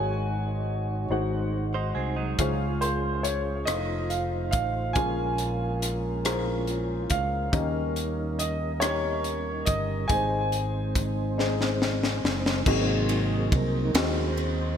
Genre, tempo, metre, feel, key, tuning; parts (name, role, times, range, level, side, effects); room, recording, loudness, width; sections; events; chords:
slow gospel; 47 BPM (dotted quarters); 6/8; straight; A4 = 442 Hz
warm baby grand piano; melody; 0.0-12.2 s; C5 to Ab5; -31 LUFS; right 1 dB; wide subtle chorus, digital delay
warm upright piano; accompaniment; 0.0-14.8 s; Ab2 to Gb5; -32 LUFS; left 3 dB; wide subtle chorus
percussive tonewheel organ; sustained chords; 0.0-14.8 s; C3 to Db5; -32 LUFS; right 1 dB; slow rotary speaker, chorus vibrato
fingered electric bass; bass; 0.0-14.8 s; F1 to Eb2; -30 LUFS; equal
direct-recorded clean electric guitar; second line; 1.7-2.6 s; Gb3 to C5; -36 LUFS; right 7 dB; wide subtle chorus
crisp fusion drum kit; drums; 2.4-14.6 s; crash cymbal, hi-hat, kick drum, ride cymbal, rim click, snare drum; -28 LUFS; left 1 dB; gated reverb
moderate lush hall reverb, RT60 3.4 s; bright 1980s-style digital production; -24 LUFS; side -8 dB against mid
0.0-12.7 A section; 12.7-14.8 B section
drum fill 11.4-12.7; tonewheel organ solo 12.7-14.8
0.0 Ab7sus4; 1.1 Ab7; 2.4 Dbmaj7; 3.7 F7; 5.0 Bbm7; 7.5 Eb7; 10.1 Ab; 12.7 Ab7